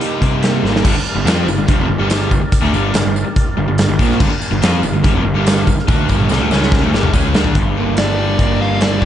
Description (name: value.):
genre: classic rock.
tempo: 143 BPM.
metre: 4/4.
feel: straight.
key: G minor.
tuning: A4 = 441 Hz.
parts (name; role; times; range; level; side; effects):
cranked stack guitar; riff; 0.0-9.1 s; F2 to F4; -21 LUFS; left 6 dB; overdrive.
overdriven semi-hollow guitar; riff; 0.0-9.1 s; F2 to G4; -20 LUFS; right 5 dB; none.
big rock drum kit; drums; 0.0-9.1 s; crash cymbal, hi-hat, kick drum, snare drum, toms; -16 LUFS; equal; none.
fuzz picked electric bass; bass; 0.2-9.1 s; F1 to C3; -19 LUFS; equal; overdrive.
tonewheel organ; sustained chords; 0.9-7.5 s; Bb3 to D5; -27 LUFS; equal; overdrive, fast rotary speaker.
tambourine; percussion; 0.9-7.4 s; none; -34 LUFS; right 7 dB; none.
fuzz lead guitar; melody; 8.0-9.0 s; D5 to F5; -21 LUFS; right 1 dB; distortion, slapback echo.
room: light reverb.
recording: nothing above 10.4 kHz.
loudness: -12 LUFS.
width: side -10 dB against mid.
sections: 0.8-7.6 A section; 7.6-9.1 B section.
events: drum fill 0.6, 5.9-7.6; lead electric guitar solo 7.6-9.1.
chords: 0.0 Cm7; 0.8 Gm.